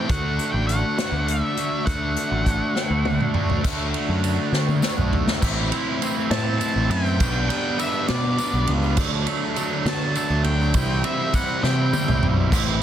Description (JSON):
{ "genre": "indie rock", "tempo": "68 BPM (dotted quarters)", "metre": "6/8", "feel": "straight", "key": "unclear", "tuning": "A4 = 439 Hz", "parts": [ { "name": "octave-fuzz lead guitar", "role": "melody", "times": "0.0-3.3, 6.3-12.3 s", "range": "D5 to A5", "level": "-28 LUFS", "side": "equal", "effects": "distortion" }, { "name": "ensemble organ-string", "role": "sustained chords", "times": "0.0-5.4, 12.5-12.8 s", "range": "F#4 to D6", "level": "-38 LUFS", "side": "equal", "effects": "none" }, { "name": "overdriven electric guitar", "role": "riff", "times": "0.0-12.8 s", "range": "E3 to F#4", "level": "-27 LUFS", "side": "right 8 dB", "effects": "analog chorus, analog delay" }, { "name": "sludgy distorted guitar", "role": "riff", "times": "0.0-12.8 s", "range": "A2 to C5", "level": "-28 LUFS", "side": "left 6 dB", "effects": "overdrive" }, { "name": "growling picked electric bass", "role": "bass", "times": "0.1-12.8 s", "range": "A1 to D3", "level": "-23 LUFS", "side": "equal", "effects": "overdrive" }, { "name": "unplugged drum kit", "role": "drums", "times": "0.1-12.7 s", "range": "crash cymbal, hi-hat, kick drum, ride cymbal, snare drum, toms", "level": "-25 LUFS", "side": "equal", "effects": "none" }, { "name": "tambourine", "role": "percussion", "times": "3.6-12.7 s", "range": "none", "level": "-39 LUFS", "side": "left 8 dB", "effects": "none" } ], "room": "light reverb, studio ambience", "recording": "dense, heavily limited modern master", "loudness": "-20 LUFS", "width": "side -10 dB against mid", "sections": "0.0-3.7 A section; 3.7-5.4 B section; 5.4-12.8 C section", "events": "drum fill 2.8-3.7, 4.5-5.4, 11.6-12.5", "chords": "0.1 Dadd9; 5.4 Am; 7.2 G/B; 9.0 D; 10.7 C", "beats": "| 0.10 0.99 | 1.88 2.77 | 3.65 4.54 | 5.43 6.32 | 7.20 8.09 | 8.97 9.86 | 10.75 11.63 | 12.52" }